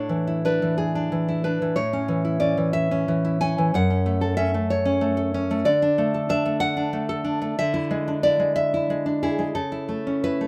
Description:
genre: romantic piece for solo classical guitar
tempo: 61 BPM (dotted quarters)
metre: 6/8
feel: rubato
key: A major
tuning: A4 = 441 Hz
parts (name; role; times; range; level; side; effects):
- nylon-string guitar; solo; 0.0-10.5 s; F#2 to G#5; -23 LUFS; equal; none
room: light reverb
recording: none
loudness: -23 LUFS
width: mono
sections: 0.0-10.5 A section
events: none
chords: 0.0 E7/A; 1.8 A; 3.7 F#m; 5.7 D; 7.6 E7/D; 9.5 A/C#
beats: 0.79 | 1.77 2.75 | 3.75 4.71 | 5.67 6.62 | 7.58 8.55 | 9.54

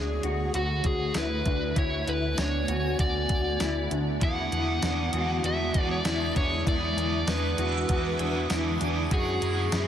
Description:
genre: dream pop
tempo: 98 BPM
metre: 4/4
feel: straight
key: unclear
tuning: A4 = 438 Hz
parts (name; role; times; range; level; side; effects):
- overdriven slide guitar; melody; 0.0-9.9 s; F#4 to F#5; -31 LUFS; equal; tape echo
- granular cloud pad; sustained chords; 0.0-9.9 s; B2 to C#5; -34 LUFS; equal; built-in reverb
- mellow electric guitar; arpeggios; 0.0-9.9 s; D4 to F#4; -32 LUFS; left 1 dB; ensemble chorus, tape echo
- fat analog bass; bass; 0.0-9.9 s; D2 to F#2; -31 LUFS; equal; none
- clean 12-bit digital drum machine; drums; 0.2-9.9 s; hi-hat, kick drum, snare drum, tambourine; -29 LUFS; equal; none
- backwards swelling texture; texture; 2.1-9.0 s; E5 to G#5; -42 LUFS; right 3 dB; built-in reverb, tape echo
- overdriven electric guitar; accompaniment; 4.2-9.9 s; F#2 to G#4; -33 LUFS; right 4 dB; harmonic tremolo, analog chorus
room: light reverb, digital ambience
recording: dense, heavily limited modern master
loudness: -24 LUFS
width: side -9 dB against mid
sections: 0.0-9.9 A section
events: none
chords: 0.0 Dmaj7; 4.2 E7; 9.1 F#7sus4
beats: 0.54 1.16 | 1.77 2.38 2.99 3.61 | 4.22 4.83 5.44 6.05 | 6.67 7.28 7.89 8.50 | 9.12 9.73

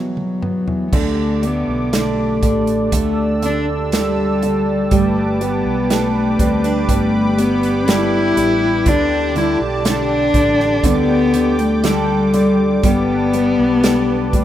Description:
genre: pop ballad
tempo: 60 BPM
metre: 4/4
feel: straight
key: unclear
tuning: A4 = 440 Hz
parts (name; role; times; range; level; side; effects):
- dark cello; melody; 0.0-14.4 s; F#3 to E4; -17 LUFS; left 2 dB; none
- clear concert grand piano; accompaniment; 0.0-14.4 s; E2 to B3; -22 LUFS; equal; none
- picked steel-string acoustic guitar; arpeggios; 0.0-14.4 s; E2 to A4; -25 LUFS; right 8 dB; none
- natural country drum kit; drums; 0.2-14.4 s; crash cymbal, hi-hat, kick drum, snare drum, toms; -20 LUFS; right 1 dB; none
- warm analog pad; sustained chords; 0.9-14.4 s; G4 to E6; -24 LUFS; right 2 dB; chorus
- mellow fretless electric bass; bass; 0.9-14.4 s; G1 to D2; -25 LUFS; right 1 dB; ensemble chorus
room: light reverb, studio ambience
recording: rough home demo mix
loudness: -14 LUFS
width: side -11 dB against mid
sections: 0.9-14.4 A section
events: drum fill 0.0-0.9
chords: 0.0 Emadd9; 0.9 Dsus4; 4.9 Gadd9; 8.9 Dsus4; 12.8 Gadd9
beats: | 0.93 1.93 2.93 3.93 | 4.92 5.91 6.89 7.88 | 8.87 9.85 10.84 11.84 | 12.84 13.84

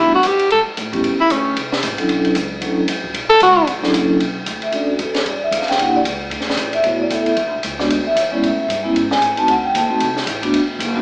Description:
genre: jazz, small-group swing and bop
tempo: 227 BPM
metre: 4/4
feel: swing 59% on 8ths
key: B minor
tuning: A4 = 440 Hz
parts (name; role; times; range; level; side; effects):
- breathy tenor saxophone; melody; 0.0-3.7 s; C#4 to A4; -12 LUFS; equal; none
- vibraphone with soft mallets; accompaniment; 0.0-11.0 s; F#3 to A5; -17 LUFS; equal; none
- upright bass; bass; 0.0-11.0 s; E1 to A2; -30 LUFS; equal; none
- open jazz drum kit; drums; 0.2-10.9 s; hi-hat, kick drum, ride cymbal, snare drum; -22 LUFS; equal; none
room: moderate large studio reverb, RT60 1.1 s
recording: band playing live in one room, small speaker sound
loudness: -14 LUFS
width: side -30 dB against mid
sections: 0.0-4.2 A section; 4.2-11.0 A section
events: tenor saxophone solo 0.0-4.2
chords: 0.0 Emadd9; 1.0 Dsus2; 1.6 C69; 2.1 Bm11; 4.2 Bm9; 5.3 Dmadd11; 5.8 C9; 6.3 D69; 7.4 E7; 8.4 Amaj7(no3); 9.5 D7b9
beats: 0.24 0.51 0.77 | 1.04 1.30 1.56 1.83 | 2.09 2.35 2.62 2.88 | 3.15 3.41 3.67 3.94 | 4.20 4.46 4.73 4.99 | 5.26 5.52 5.78 6.05 | 6.31 6.58 6.84 7.11 | 7.37 7.63 7.90 8.16 | 8.43 8.69 8.95 9.22 | 9.48 9.74 10.01 10.27 | 10.54 10.80

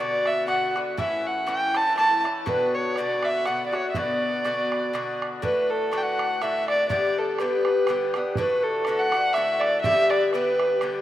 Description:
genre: celtic folk, Celtic waltz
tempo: 122 BPM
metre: 3/4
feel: swing 55% on 8ths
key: B minor, D major from 5.4 s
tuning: A4 = 441 Hz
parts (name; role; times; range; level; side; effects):
- dark fiddle; melody; 0.0-11.0 s; A4 to A5; -22 LUFS; equal; none
- Irish bouzouki; accompaniment; 0.0-11.0 s; G2 to G4; -28 LUFS; left 4 dB; none
- bodhran; percussion; 0.3-10.9 s; none; -35 LUFS; right 5 dB; none
room: moderate lush hall reverb, RT60 2.7 s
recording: rough home demo mix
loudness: -21 LUFS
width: side -12 dB against mid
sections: 0.0-5.4 A section; 5.4-11.0 B section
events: none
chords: 0.0 Bm; 1.0 A; 2.5 Bm; 5.4 D; 6.9 G; 8.4 D; 9.8 G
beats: 0.48 | 0.98 1.47 1.97 | 2.46 2.96 3.45 | 3.94 4.44 4.93 | 5.42 5.91 6.40 | 6.89 7.38 7.88 | 8.37 8.86 9.35 | 9.84 10.33 10.82

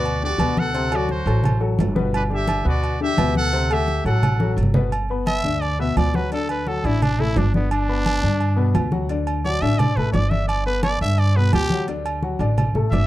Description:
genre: latin, salsa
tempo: 172 BPM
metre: 4/4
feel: straight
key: G major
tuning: A4 = 440 Hz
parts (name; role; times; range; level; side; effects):
- bright trumpet section; melody; 0.0-4.5 s; D4 to F#5; -25 LUFS; right 1 dB; none
- warm concert grand piano; accompaniment; 0.0-13.1 s; B2 to D6; -26 LUFS; left 5 dB; none
- upright bass; bass; 0.0-13.1 s; G1 to G2; -22 LUFS; right 1 dB; none
- congas; percussion; 0.0-13.1 s; none; -25 LUFS; equal; none
- agogo bells and timbales; percussion; 0.1-13.1 s; none; -28 LUFS; right 5 dB; none
- growling trumpet; melody; 5.3-13.1 s; B3 to E5; -25 LUFS; right 1 dB; none
room: small room ambience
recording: dry, close 1970s-style studio recording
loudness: -18 LUFS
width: side -15 dB against mid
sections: 0.0-4.9 A section; 4.9-13.1 B section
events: drum fill 4.4-4.9; trumpet solo 4.9-13.1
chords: 0.0 G; 0.7 D7; 2.1 G; 3.5 D7; 4.9 G; 6.3 D; 7.7 G; 9.1 D; 10.5 G; 11.9 D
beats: 0.04 0.39 | 0.74 1.09 1.44 1.79 | 2.14 2.49 2.83 3.18 | 3.53 3.88 4.23 4.58 | 4.92 5.27 5.62 5.97 | 6.32 6.67 7.01 7.36 | 7.71 8.06 8.41 8.75 | 9.10 9.45 9.80 10.14 | 10.49 10.84 11.19 11.53 | 11.88 12.22 12.57 12.92

